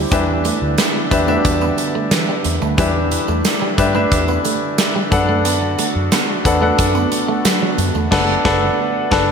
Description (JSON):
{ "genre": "1980s-style pop", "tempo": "90 BPM", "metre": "4/4", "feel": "straight", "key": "E minor", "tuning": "A4 = 440 Hz", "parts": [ { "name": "clear grand piano", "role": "accompaniment", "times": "0.0-9.3 s", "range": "E3 to A5", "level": "-18 LUFS", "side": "left 2 dB", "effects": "none" }, { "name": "phased analog pad", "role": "sustained chords", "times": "0.0-9.3 s", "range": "D3 to F#4", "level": "-25 LUFS", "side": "right 2 dB", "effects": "phaser, chorus" }, { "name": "clean electric guitar", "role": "riff", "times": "0.0-8.1 s", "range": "F#3 to B3", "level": "-25 LUFS", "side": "right 5 dB", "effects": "analog chorus, digital delay" }, { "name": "vintage muted fingered electric bass", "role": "bass", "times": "0.0-9.3 s", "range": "F#1 to F#3", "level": "-21 LUFS", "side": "equal", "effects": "none" }, { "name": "big rock drum kit", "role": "drums", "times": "0.1-9.3 s", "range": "crash cymbal, hi-hat, kick drum, snare drum, tambourine", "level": "-19 LUFS", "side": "right 1 dB", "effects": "gated reverb" }, { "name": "tambourine", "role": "percussion", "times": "0.1-8.1 s", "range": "none", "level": "-34 LUFS", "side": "right 12 dB", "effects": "none" } ], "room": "moderate lush hall reverb, RT60 2.6 s", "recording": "bright 1980s-style digital production", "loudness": "-14 LUFS", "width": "side -6 dB against mid", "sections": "0.0-9.3 A section", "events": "band accent 8.1-9.3", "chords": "0.1 Em7; 5.1 Bm7" }